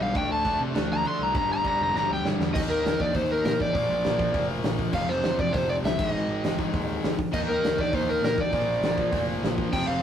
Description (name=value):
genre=punk rock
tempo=201 BPM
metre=4/4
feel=straight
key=unclear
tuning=A4 = 440 Hz
part: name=overdriven semi-hollow guitar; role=melody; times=0.0-10.0 s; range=Bb4 to C6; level=-26 LUFS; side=equal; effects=none
part: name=distorted electric guitar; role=riff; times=0.0-10.0 s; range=F2 to Eb4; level=-31 LUFS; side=left 3 dB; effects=overdrive
part: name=distorted electric guitar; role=riff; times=0.0-2.5, 7.3-10.0 s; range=F2 to Eb4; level=-36 LUFS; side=right 4 dB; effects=distortion
part: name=fuzz picked electric bass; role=bass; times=0.0-10.0 s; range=F1 to D3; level=-33 LUFS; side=right 1 dB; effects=overdrive
part: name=fuzz guitar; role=riff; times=0.1-10.0 s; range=F2 to Eb4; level=-37 LUFS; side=right 2 dB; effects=none
part: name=big rock drum kit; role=drums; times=0.2-9.8 s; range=crash cymbal, hi-hat, kick drum, snare drum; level=-29 LUFS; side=equal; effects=none
room=moderate small room reverb, RT60 0.5 s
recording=rough rehearsal-room recording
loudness=-23 LUFS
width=side -9 dB against mid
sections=0.0-2.5 A section; 2.5-10.0 B section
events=half time 0.0-2.5; overdriven electric guitar solo 0.0-2.5; drum fill 1.9-2.5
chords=0.2 D5; 1.4 G5; 2.5 Eb5; 3.7 Bb; 4.9 F5; 6.0 Ab5; 7.3 Eb5; 8.5 Bb